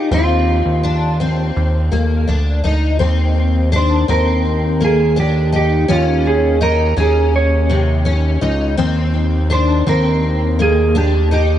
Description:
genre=dream pop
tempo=83 BPM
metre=4/4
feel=straight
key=Eb major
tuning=A4 = 440 Hz
part: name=mellow electric guitar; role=melody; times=0.0-11.6 s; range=F4 to Db5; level=-18 LUFS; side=right 2 dB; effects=digital delay
part: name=fingerpicked twelve-string acoustic guitar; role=arpeggios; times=0.0-11.6 s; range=C3 to Eb4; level=-19 LUFS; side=left 3 dB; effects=ensemble chorus, digital delay
part: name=fat analog bass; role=bass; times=0.1-11.6 s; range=Db2 to Eb2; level=-15 LUFS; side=equal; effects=none
room=light reverb, small room ambience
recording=nothing above 10.6 kHz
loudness=-13 LUFS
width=side -11 dB against mid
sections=0.0-3.0 A section; 3.0-11.6 B section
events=none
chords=0.1 F5/Eb; 1.6 Eb5; 5.9 Dbsus2/Eb; 8.8 Bbsus4/Eb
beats=| 0.11 0.83 1.55 2.28 | 3.00 3.72 4.45 5.17 | 5.89 6.62 7.34 8.06 | 8.78 9.51 10.23 10.95

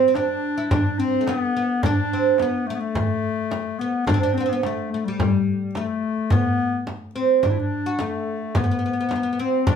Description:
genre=Turkish makam ensemble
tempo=107 BPM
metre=4/4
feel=straight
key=unclear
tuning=A4 = 439 Hz
part: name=oud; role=melody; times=0.0-9.8 s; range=G3 to F#4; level=-24 LUFS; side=right 5 dB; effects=none
part: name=warm clarinet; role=second line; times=0.0-9.8 s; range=G3 to E4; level=-24 LUFS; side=left 6 dB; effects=none
part: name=darbuka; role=percussion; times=0.0-9.8 s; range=none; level=-27 LUFS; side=right 1 dB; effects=none
part: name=frame drum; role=percussion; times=0.2-9.8 s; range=none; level=-25 LUFS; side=equal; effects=none
room=moderate studio reverb, RT60 0.6 s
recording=band playing live in one room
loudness=-20 LUFS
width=side -7 dB against mid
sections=0.0-9.8 A section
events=none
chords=none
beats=0.15 0.71 1.27 | 1.83 2.39 2.95 3.51 | 4.07 4.63 5.19 5.75 | 6.31 6.87 7.43 8.00 | 8.55 9.12 9.68

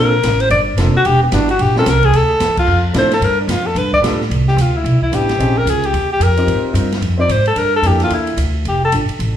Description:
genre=jazz, small-group swing and bop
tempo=221 BPM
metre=4/4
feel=swing 61% on 8ths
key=unclear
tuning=A4 = 443 Hz
part: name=clear alto saxophone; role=melody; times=0.0-8.9 s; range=B3 to D5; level=-16 LUFS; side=left 1 dB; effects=slapback echo
part: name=warm concert grand piano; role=accompaniment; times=0.0-8.2 s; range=F3 to C5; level=-22 LUFS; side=equal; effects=slapback echo
part: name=upright bass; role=bass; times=0.0-9.4 s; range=E1 to A2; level=-16 LUFS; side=equal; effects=none
part: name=open jazz drum kit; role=drums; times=0.2-9.3 s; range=crash cymbal, hi-hat, kick drum, ride cymbal, snare drum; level=-24 LUFS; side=right 1 dB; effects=none
room=light reverb, small room ambience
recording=live gig heard through the venue's PA, club reverb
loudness=-12 LUFS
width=side -10 dB against mid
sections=0.0-4.3 A section; 4.3-9.4 B section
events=band accent 2.5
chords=0.0 Bbmaj7; 1.0 Em7; 1.6 Bbm69; 2.1 Dm9; 3.2 Fsus2; 3.8 G9; 4.3 Cmaj9; 5.4 Bbm11; 5.9 Ebadd9; 6.5 Ab6; 7.6 Gm13; 8.7 Fadd9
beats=0.23 0.50 0.77 | 1.04 1.32 1.59 1.86 | 2.13 2.40 2.67 2.95 | 3.22 3.49 3.76 4.03 | 4.30 4.58 4.85 5.12 | 5.39 5.66 5.93 6.21 | 6.48 6.75 7.02 7.29 | 7.57 7.84 8.11 8.38 | 8.65 8.92 9.20

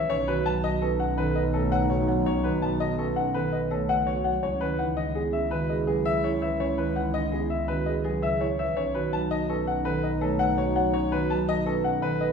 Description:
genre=classical, minimalist pattern music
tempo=166 BPM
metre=6/4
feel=straight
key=unclear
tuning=A4 = 440 Hz
part: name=warm baby grand piano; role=melody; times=0.0-12.3 s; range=G#4 to A5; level=-28 LUFS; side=left 3 dB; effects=none
part: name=marimba with medium mallets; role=accompaniment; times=0.0-12.3 s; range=C#3 to C#4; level=-31 LUFS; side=equal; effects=none
part: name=vibraphone with soft mallets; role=arpeggios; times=0.0-12.3 s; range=C#4 to C#5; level=-31 LUFS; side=right 7 dB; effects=none
part: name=wooden-headed alto flute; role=second line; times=0.1-12.3 s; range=D#4 to E4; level=-33 LUFS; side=left 2 dB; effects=none
part: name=rich studio double bass section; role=bass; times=0.1-12.3 s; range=B1 to C#2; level=-31 LUFS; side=right 1 dB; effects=none
room=wet large studio reverb, RT60 1.4 s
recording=heard from further back in the room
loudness=-24 LUFS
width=side -6 dB against mid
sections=0.0-12.3 A section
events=none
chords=0.1 B7; 4.4 C#m9; 8.8 B7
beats=| 0.09 0.46 0.82 1.18 1.54 1.90 | 2.26 2.62 2.99 3.35 3.71 4.07 | 4.43 4.79 5.15 5.52 5.88 6.24 | 6.60 6.96 7.32 7.68 8.05 8.41 | 8.77 9.13 9.49 9.85 10.21 10.58 | 10.94 11.30 11.66 12.02

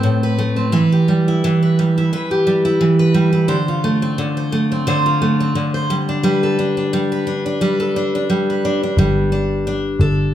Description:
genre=pop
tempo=87 BPM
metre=4/4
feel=swing 55% on 16ths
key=unclear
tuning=A4 = 440 Hz
part: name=picked steel-string acoustic guitar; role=accompaniment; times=0.0-10.3 s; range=A2 to C5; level=-15 LUFS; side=equal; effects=none
part: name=vintage muted picked electric bass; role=bass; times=9.0-10.3 s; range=G1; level=-17 LUFS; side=equal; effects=none
room=moderate large studio reverb, RT60 1.1 s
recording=band playing live in one room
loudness=-15 LUFS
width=side -11 dB against mid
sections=0.0-9.0 A section; 9.0-10.3 B section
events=none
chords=0.0 Amadd9; 0.7 Em; 3.5 Dm7; 5.9 Gadd9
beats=0.04 | 0.73 1.42 2.10 2.79 | 3.48 4.17 4.86 5.54 | 6.23 6.92 7.61 8.29 | 8.98 9.67

